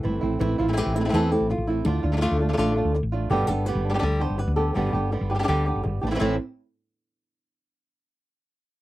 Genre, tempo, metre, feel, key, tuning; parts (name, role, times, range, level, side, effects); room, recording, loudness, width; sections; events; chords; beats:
flamenco; 166 BPM; 4/4; straight; A minor; A4 = 439 Hz
flamenco guitar; melody; 0.0-6.3 s; A2 to C5; -25 LUFS; left 1 dB
flamenco guitar; stabs; 0.0-6.4 s; A2 to G4; -28 LUFS; right 5 dB
woody fretless electric bass; bass; 0.0-6.4 s; G1 to E2; -25 LUFS; equal
little or no reverb; dry, close 1970s-style studio recording; -21 LUFS; side -16 dB against mid
0.4-6.2 A section; 6.2-7.7 B section
0.4 Am; 1.9 Dm; 3.3 G; 6.2 Am
0.04 | 0.40 0.76 1.13 1.49 | 1.85 2.21 2.58 2.94 | 3.30 3.67 4.03 4.39 | 4.75 5.12 5.48 5.84 | 6.20